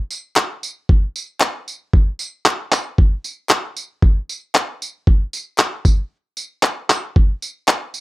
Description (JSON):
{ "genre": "pop", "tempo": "115 BPM", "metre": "4/4", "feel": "straight", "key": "none", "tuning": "none", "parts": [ { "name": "dusty soul sampler-style drum kit", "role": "drums", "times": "0.1-8.0 s", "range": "handclaps, kick drum, tambourine", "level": "-15 LUFS", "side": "equal", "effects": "none" }, { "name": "group handclap", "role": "percussion", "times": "0.4-7.8 s", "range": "none", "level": "-25 LUFS", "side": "left 2 dB", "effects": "none" } ], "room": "little or no reverb", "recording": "none", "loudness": "-17 LUFS", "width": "side -20 dB against mid", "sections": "0.0-8.0 A section", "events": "none", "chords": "none" }